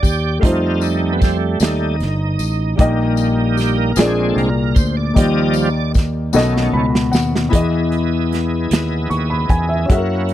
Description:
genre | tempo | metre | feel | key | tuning
slow gospel | 51 BPM (dotted quarters) | 6/8 | straight | Eb major | A4 = 440 Hz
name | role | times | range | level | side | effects
warm grand piano | accompaniment | 0.0-10.3 s | Bb2 to C#6 | -19 LUFS | left 3 dB | none
bright tonewheel organ | sustained chords | 0.0-10.3 s | D#3 to Eb5 | -21 LUFS | right 4 dB | slow rotary speaker, overdrive, chorus vibrato
fingered electric bass | bass | 0.0-10.3 s | G1 to F#2 | -19 LUFS | equal | none
natural country drum kit | drums | 0.0-10.3 s | hi-hat, kick drum, snare drum | -16 LUFS | equal | none
tambourine | percussion | 0.0-7.5 s | none | -31 LUFS | left 19 dB | none
room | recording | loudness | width
small room ambience | dry, close 1970s-style studio recording | -14 LUFS | side -12 dB against mid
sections
0.0-7.5 A section; 7.5-10.3 B section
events
tonewheel organ solo 0.0-7.5; drum fill 6.3-7.5; grand piano fill 6.3-7.5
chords
0.4 F7; 2.8 Eb/Bb; 4.0 Bb7; 5.2 Ebmaj7; 6.3 B7; 7.5 Emaj7

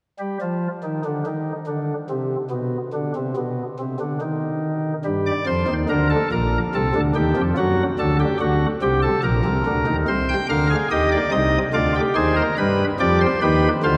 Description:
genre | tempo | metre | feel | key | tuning
classical, baroque-style 3-part fugue for pipe organ | 71 BPM | 3/4 | straight | unclear | A4 = 440 Hz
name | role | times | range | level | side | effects
pipe organ, cornet | solo | 0.2-14.0 s | Bb1 to G5 | -21 LUFS | equal | none
room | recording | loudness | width
wet cathedral reverb, RT60 5.1 s | none | -21 LUFS | mono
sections
0.0-14.0 A section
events
none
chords
0.0 N.C.; 5.0 Gm; 6.7 Am7b5/C; 7.6 D7; 9.2 Bbadd9; 10.1 Cm; 11.7 Dm7b5; 12.6 G7

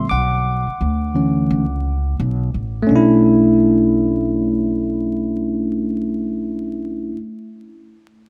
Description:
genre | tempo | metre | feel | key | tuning
hip hop, jazz-hop | 86 BPM | 4/4 | swing 60% on 16ths | B minor | A4 = 441 Hz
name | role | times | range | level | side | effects
bell-like tine electric piano | accompaniment | 0.0-7.2 s | D3 to D6 | -19 LUFS | equal | none
upright bass | bass | 0.0-7.1 s | A1 to D2 | -25 LUFS | equal | none
room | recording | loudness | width
wet lush hall reverb, RT60 2.8 s | rough home demo mix, vinyl crackle | -18 LUFS | mono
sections
0.0-2.9 A section; 2.9-5.7 B section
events
tine electric piano solo 0.0-2.9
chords
0.1 Bm11

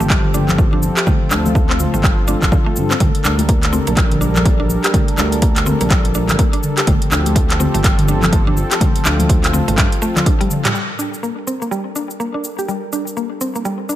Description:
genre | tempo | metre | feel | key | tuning
afro house | 124 BPM | 4/4 | swing 60% on 16ths | G minor | A4 = 440 Hz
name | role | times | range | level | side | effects
warm analog pad | sustained chords | 0.0-14.0 s | F3 to Bb4 | -23 LUFS | equal | chorus, sidechain pumping
mallet-like synth pluck | arpeggios | 0.0-14.0 s | D3 to G4 | -23 LUFS | equal | chorus, sidechain pumping, ping-pong delay
smooth gliding synth bass | bass | 0.0-9.9 s | G1 to G2 | -19 LUFS | equal | sidechain pumping
afro-pop drum kit | drums | 0.0-14.0 s | handclaps, hi-hat, shaker, toms | -20 LUFS | equal | none
electronic kick drum | drums | 0.1-10.4 s | none | -16 LUFS | equal | overdrive
congas | percussion | 0.3-10.2 s | none | -24 LUFS | left 3 dB | none
room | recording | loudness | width
light reverb | none | -13 LUFS | side -13 dB against mid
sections
0.0-10.7 A section; 10.7-14.0 B section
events
drum fill 10.3-10.7; band accent 10.6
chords
0.0 Fadd9/G; 3.0 Gm; 6.9 Fadd9/G; 10.7 Gm

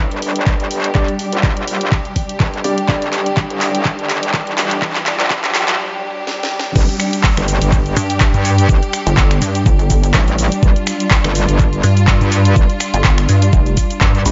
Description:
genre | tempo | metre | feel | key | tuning
bass house | 124 BPM | 4/4 | swing 56% on 16ths | G minor | A4 = 440 Hz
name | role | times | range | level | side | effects
rich studio string section | sustained chords | 0.0-14.3 s | G3 to G4 | -24 LUFS | equal | sidechain pumping
metallic wobble bass | bass | 0.0-14.2 s | G1 to G2 | -20 LUFS | equal | chorus, tube saturation, sidechain pumping, high-pass filter
riser, swell and downlifter | sound effects | 0.4-10.6 s | none | -35 LUFS | equal | none
house drum kit | drums | 0.1-14.3 s | cabasa, crash cymbal, finger snaps, handclaps, hi-hat, snare drum | -22 LUFS | equal | overdrive
electronic kick drum | drums | 0.5-14.1 s | none | -16 LUFS | equal | overdrive
warm concert grand piano | stabs | 0.9-3.0 s | G3 to D5 | -25 LUFS | equal | sidechain pumping, low-pass filter, diffuse ambient delay
pulsing pluck wobble bass | bass | 8.0-14.3 s | F1 to G2 | -16 LUFS | equal | chorus, tube saturation, sidechain pumping
room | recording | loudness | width
light reverb, digital ambience | high-pass filter, nothing above 7.6 kHz | -15 LUFS | mono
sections
0.0-6.8 A section; 6.8-14.3 B section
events
build-up 0.0-6.8; drum fill 0.0-5.8, 6.3-6.8; filter sweep 0.0-6.8; riser 0.4-6.8; break 5.8-6.8; swell 5.8-6.8; drop 6.8-14.3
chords
0.0 G5

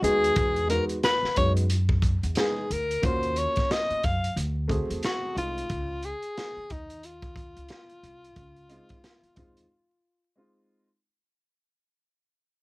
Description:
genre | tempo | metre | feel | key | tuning
hip hop, jazz-hop | 90 BPM | 4/4 | swing 60% on 16ths | Db major | A4 = 440 Hz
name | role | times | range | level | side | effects
breathy alto saxophone | melody | 0.0-10.4 s | Eb4 to F5 | -27 LUFS | left 1 dB | none
dark grand piano | accompaniment | 0.0-10.9 s | Ab3 to G#4 | -32 LUFS | equal | none
upright bass | bass | 0.0-9.6 s | C2 to Gb2 | -29 LUFS | equal | none
crunchy breakbeat drum kit | drums | 0.0-9.7 s | hi-hat, kick drum, snare drum | -29 LUFS | equal | none
room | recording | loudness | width
light reverb | vinyl crackle | -24 LUFS | side -22 dB against mid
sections
0.0-11.0 A section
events
fade-out 0.0-11.0; break 9.7-11.0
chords
0.4 Emaj7; 3.0 Ebm7; 4.4 D7#11; 5.7 Dbmaj9

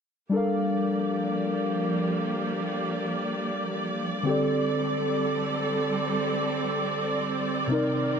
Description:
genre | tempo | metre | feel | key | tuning
R&B | free time | none | none | G minor | A4 = 439 Hz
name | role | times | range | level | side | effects
muted felt-like synth keys | accompaniment | 0.3-8.2 s | C3 to F5 | -27 LUFS | left 2 dB | chorus
warm symphonic string section | sustained chords | 0.3-8.2 s | Eb3 to D5 | -28 LUFS | right 3 dB | none
room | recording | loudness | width
moderate lush hall reverb, RT60 2.7 s | dark, warm production | -25 LUFS | side -6 dB against mid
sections
0.3-8.2 A section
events
none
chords
0.3 Gm7; 4.3 D7sus4

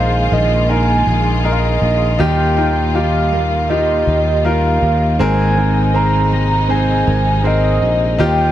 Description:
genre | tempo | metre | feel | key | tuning
pop | 80 BPM | 4/4 | straight | unclear | A4 = 440 Hz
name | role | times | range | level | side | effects
mellow horn-like synth lead | melody | 0.0-8.5 s | Eb5 to Bb5 | -18 LUFS | right 1 dB | chorus
clear grand piano | accompaniment | 0.0-8.5 s | Ab2 to C5 | -20 LUFS | left 2 dB | none
rich studio string section | sustained chords | 0.0-8.5 s | C3 to F4 | -24 LUFS | left 3 dB | none
fingerpicked steel-string acoustic guitar | arpeggios | 0.0-8.5 s | Bb2 to Bb4 | -24 LUFS | right 7 dB | none
sustaining fretless electric bass | bass | 0.0-8.5 s | Ab1 to Eb2 | -16 LUFS | equal | none
room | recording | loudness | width
light reverb, small room reverb | none | -12 LUFS | side -12 dB against mid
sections
0.0-8.5 A section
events
none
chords
0.0 Bb7sus4; 2.2 Ebadd9; 5.2 Abadd9

